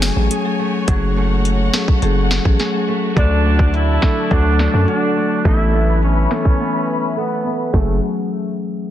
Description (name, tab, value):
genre	dancehall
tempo	105 BPM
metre	4/4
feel	straight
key	F# minor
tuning	A4 = 440 Hz
part	rich studio string section	sustained chords	0.0-8.0 s	A3 to B5	-26 LUFS	left 3 dB	sidechain pumping
part	nylon-string guitar	arpeggios	0.0-8.0 s	D3 to A4	-26 LUFS	right 5 dB	none
part	hard-hitting 808-style bass	bass	0.0-8.0 s	F#1 to F#2	-17 LUFS	equal	none
part	island pop drum kit	drums	0.0-7.9 s	hi-hat, kick drum, snare drum	-17 LUFS	equal	none
part	marimba with medium mallets	accompaniment	0.2-8.0 s	E3 to A4	-21 LUFS	left 3 dB	none
part	clear horn section	second line	3.2-8.0 s	A3 to E4	-22 LUFS	right 3 dB	ping-pong delay
room	small room ambience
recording	dense, heavily limited modern master, low-pass filter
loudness	-14 LUFS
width	side -11 dB against mid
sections	0.0-7.7 A section; 7.7-8.9 B section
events	filter sweep 0.0-7.7; break 6.6-7.7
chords	0.0 F#madd9; 3.2 D; 5.5 Asus2; 7.7 F#madd9